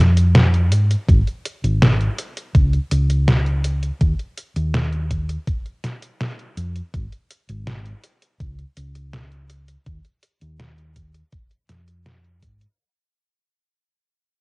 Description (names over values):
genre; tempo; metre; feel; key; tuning
vaporwave; 82 BPM; 4/4; straight; unclear; A4 = 440 Hz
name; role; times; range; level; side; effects
hollow-body short-scale fingered electric bass; bass; 0.0-12.6 s; Ab1 to Ab2; -18 LUFS; equal; tube saturation
detuned 8-bit digital drum machine; drums; 0.2-12.8 s; hi-hat, snare drum; -18 LUFS; equal; studio reverb, cassette tape
electronic kick drum; drums; 1.1-12.6 s; none; -18 LUFS; equal; studio reverb, cassette tape
room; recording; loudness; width
digital ambience; home recording on cassette; -17 LUFS; side -31 dB against mid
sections
0.0-12.8 A section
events
fade-out 0.0-12.8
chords
none